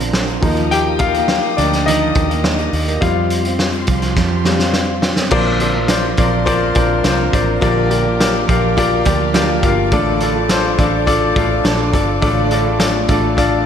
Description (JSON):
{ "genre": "piano-driven pop", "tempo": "104 BPM", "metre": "4/4", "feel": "straight", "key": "Bb major", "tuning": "A4 = 440 Hz", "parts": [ { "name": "clear baby grand piano", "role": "accompaniment", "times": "0.0-13.7 s", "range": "A2 to G5", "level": "-17 LUFS", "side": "left 4 dB", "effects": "slapback echo" }, { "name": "warm studio string section", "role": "sustained chords", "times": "0.0-13.7 s", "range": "G4 to Eb6", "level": "-27 LUFS", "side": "left 3 dB", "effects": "none" }, { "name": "picked steel-string acoustic guitar", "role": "riff", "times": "0.0-13.7 s", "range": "A2 to Bb4", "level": "-22 LUFS", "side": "right 10 dB", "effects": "slapback echo" }, { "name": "vintage muted fingered electric bass", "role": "bass", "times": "0.0-13.6 s", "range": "G1 to F2", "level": "-21 LUFS", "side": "equal", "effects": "none" }, { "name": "loose indie drum kit", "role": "drums", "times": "0.0-13.5 s", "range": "crash cymbal, hi-hat, kick drum, snare drum", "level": "-19 LUFS", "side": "equal", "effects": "none" } ], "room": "moderate lush hall reverb, RT60 2.4 s", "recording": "big arena sound", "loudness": "-13 LUFS", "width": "side -8 dB against mid", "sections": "0.0-5.3 A section; 5.3-13.7 B section", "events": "grand piano solo 0.0-5.3; drum fill 4.2-5.3", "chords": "0.4 Ebsus2; 3.0 Fsus2; 5.3 Bbadd9; 7.6 Gm7/Bb; 9.9 Dm", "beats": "0.14 | 0.72 1.29 1.87 2.44 | 3.02 3.60 4.17 4.75 | 5.32 5.90 6.47 7.05 | 7.62 8.20 8.78 9.35 | 9.93 10.50 11.08 11.65 | 12.23 12.81 13.38" }